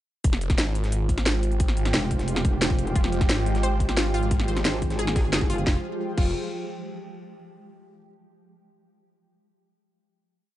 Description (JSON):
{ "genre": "dark technical drum and bass", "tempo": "177 BPM", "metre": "4/4", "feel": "straight", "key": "F minor", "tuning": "A4 = 440 Hz", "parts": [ { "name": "swarming drone", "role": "sustained chords", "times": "1.3-5.8 s", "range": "F3 to G4", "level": "-34 LUFS", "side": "right 1 dB", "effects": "built-in reverb, sidechain pumping" }, { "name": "phased detuned saw bass", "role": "bass", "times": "0.2-6.3 s", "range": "F1 to Ab1", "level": "-25 LUFS", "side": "equal", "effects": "phaser, tube saturation, sidechain pumping" }, { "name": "breakbeat sampler-style drum kit", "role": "drums", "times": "0.2-5.6 s", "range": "hi-hat, snare drum", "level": "-40 LUFS", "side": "equal", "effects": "none" }, { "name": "drum and bass drum kit", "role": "drums", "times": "0.2-6.2 s", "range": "crash cymbal, hi-hat, snare drum", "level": "-27 LUFS", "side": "equal", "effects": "studio reverb" }, { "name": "electronic kick drum", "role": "drums", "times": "0.2-6.2 s", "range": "none", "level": "-24 LUFS", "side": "equal", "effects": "studio reverb" }, { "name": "airy breathy pad", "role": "texture", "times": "0.2-7.0 s", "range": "Ab3 to G5", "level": "-33 LUFS", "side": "right 1 dB", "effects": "chorus, sidechain pumping" }, { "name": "metallic wobble bass", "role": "bass", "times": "1.9-5.7 s", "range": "F1 to Ab1", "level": "-27 LUFS", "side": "equal", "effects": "chorus, tube saturation" }, { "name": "wide unison pluck", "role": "arpeggios", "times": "3.0-6.3 s", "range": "F4 to C5", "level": "-33 LUFS", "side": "left 2 dB", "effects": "sidechain pumping, digital delay" } ], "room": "little or no reverb", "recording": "nothing above 10.3 kHz", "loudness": "-22 LUFS", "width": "side -14 dB against mid", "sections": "0.2-5.7 drop; 5.7-7.0 final chord", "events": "drop 0.2-5.7", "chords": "0.2 Fmadd9", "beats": "| 0.24 0.58 0.92 1.26 | 1.60 1.94 2.28 2.62 | 2.96 3.29 3.63 3.97 | 4.31 4.65 4.99 5.33 | 5.67 6.01 6.34 6.68" }